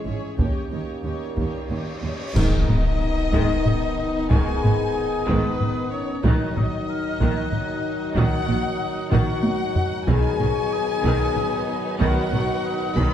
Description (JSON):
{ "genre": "cinematic, epic orchestral film score", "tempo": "62 BPM (dotted quarters)", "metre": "6/8", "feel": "straight", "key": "unclear", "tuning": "A4 = 444 Hz", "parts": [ { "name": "rich chamber violin section", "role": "melody", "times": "0.0-13.1 s", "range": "Cb5 to B5", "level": "-31 LUFS", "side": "left 3 dB", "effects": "none" }, { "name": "warm symphonic violin section", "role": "second line", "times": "0.0-13.1 s", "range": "B3 to C#5", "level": "-34 LUFS", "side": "left 4 dB", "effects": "none" }, { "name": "rich symphonic viola section", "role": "accompaniment", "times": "0.0-13.1 s", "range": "Eb3 to G#4", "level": "-30 LUFS", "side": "right 2 dB", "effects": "none" }, { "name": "mellow French horn section", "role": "sustained chords", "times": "0.0-13.1 s", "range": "Cb4 to B4", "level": "-29 LUFS", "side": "left 6 dB", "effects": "none" }, { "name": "warm trombone section", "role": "sustained chords", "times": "0.0-13.1 s", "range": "D#3 to Cb4", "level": "-32 LUFS", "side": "right 3 dB", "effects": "none" }, { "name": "rich symphonic double bass section", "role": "bass", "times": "0.1-13.0 s", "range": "G#1 to D#2", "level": "-27 LUFS", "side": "right 3 dB", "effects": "none" }, { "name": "warm symphonic cello section", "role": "bass", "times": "0.1-13.0 s", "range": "D#2 to B2", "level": "-29 LUFS", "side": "right 2 dB", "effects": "none" }, { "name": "taiko ensemble", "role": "drums", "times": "0.4-13.1 s", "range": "none", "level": "-25 LUFS", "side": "equal", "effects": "none" }, { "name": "cymbal swell and impact", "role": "sound effects", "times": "1.7-4.3 s", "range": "none", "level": "-33 LUFS", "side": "equal", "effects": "none" }, { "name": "clash cymbals and concert bass drum", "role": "percussion", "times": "2.4-3.6 s", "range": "none", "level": "-27 LUFS", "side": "equal", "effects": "none" }, { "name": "mellow silver concert flute", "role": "second line", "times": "3.3-13.1 s", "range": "B5 to Gb6", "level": "-34 LUFS", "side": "left 1 dB", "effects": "none" } ], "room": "moderate scoring stage reverb, RT60 1.6 s", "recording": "dark, warm production", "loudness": "-20 LUFS", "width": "side -10 dB against mid", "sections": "0.0-2.4 A section; 2.4-13.1 B section", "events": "cymbal swell 1.7-2.4; band accent 2.4-3.0; impact 2.4-4.3; drum fill 9.1-10.1", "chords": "0.4 D#7; 2.4 Abm; 6.2 Ebm/Bb; 10.1 B", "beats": "| 0.39 1.38 | 2.36 3.33 | 4.32 5.28 | 6.25 7.21 | 8.17 9.12 | 10.08 11.04 | 12.00 12.96" }